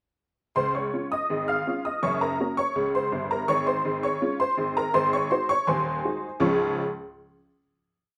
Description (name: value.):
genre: ragtime piano.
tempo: 82 BPM.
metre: 2/4.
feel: straight.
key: Db major.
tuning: A4 = 441 Hz.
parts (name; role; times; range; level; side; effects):
honky-tonk upright piano; solo; 0.6-6.8 s; Eb1 to F6; -26 LUFS; equal; none.
room: light reverb.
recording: recorded outdoors, with no room sound.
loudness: -26 LUFS.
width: mono.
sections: 0.6-6.4 A section; 6.4-7.9 final chord.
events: none.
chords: 0.6 Db; 2.0 Gb; 3.5 Db/Ab; 4.9 Ab7; 6.4 Db.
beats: | 0.56 1.29 | 2.02 2.75 | 3.48 4.21 | 4.94 5.67 | 6.41.